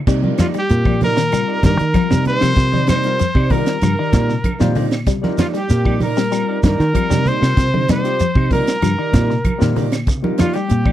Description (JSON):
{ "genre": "afrobeat", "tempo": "96 BPM", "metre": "4/4", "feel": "straight", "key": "C minor", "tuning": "A4 = 440 Hz", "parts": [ { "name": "semi-hollow electric guitar", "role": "arpeggios", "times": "0.0-10.9 s", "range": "C3 to G3", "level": "-23 LUFS", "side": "left 9 dB", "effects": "phaser" }, { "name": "electric guitar at the edge of break-up", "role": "stabs", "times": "0.1-10.9 s", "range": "Bb3 to D5", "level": "-24 LUFS", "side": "right 8 dB", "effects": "none" }, { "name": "fingered electric bass", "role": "bass", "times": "0.1-10.9 s", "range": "G2 to Eb3", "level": "-18 LUFS", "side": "equal", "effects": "none" }, { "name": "tight funk drum kit", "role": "drums", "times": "0.1-10.9 s", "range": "crash cymbal, hi-hat, kick drum, snare drum", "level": "-20 LUFS", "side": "equal", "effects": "none" }, { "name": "congas", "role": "percussion", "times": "0.1-10.9 s", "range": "none", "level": "-24 LUFS", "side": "right 3 dB", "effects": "none" }, { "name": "shekere", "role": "percussion", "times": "0.1-10.9 s", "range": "none", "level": "-22 LUFS", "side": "right 1 dB", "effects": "none" }, { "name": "overdriven tine electric piano", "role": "accompaniment", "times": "0.2-10.9 s", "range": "G3 to C5", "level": "-26 LUFS", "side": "left 8 dB", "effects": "wide subtle chorus" }, { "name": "clear trumpet", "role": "melody", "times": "0.4-10.9 s", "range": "F4 to C5", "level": "-22 LUFS", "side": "equal", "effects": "none" }, { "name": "breathy alto saxophone", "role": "second line", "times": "0.4-10.9 s", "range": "F4 to C5", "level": "-26 LUFS", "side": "right 3 dB", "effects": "none" }, { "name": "claves", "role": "percussion", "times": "0.4-10.9 s", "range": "none", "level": "-36 LUFS", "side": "right 3 dB", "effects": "none" } ], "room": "little or no reverb", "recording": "dry, close 1970s-style studio recording", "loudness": "-14 LUFS", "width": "side -12 dB against mid", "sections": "0.1-10.9 A section", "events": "none", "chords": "0.1 Cm9", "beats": "| 0.08 0.70 1.33 1.95 | 2.58 3.20 3.83 4.45 | 5.08 5.70 6.33 6.95 | 7.58 8.20 8.83 9.45 | 10.08 10.70" }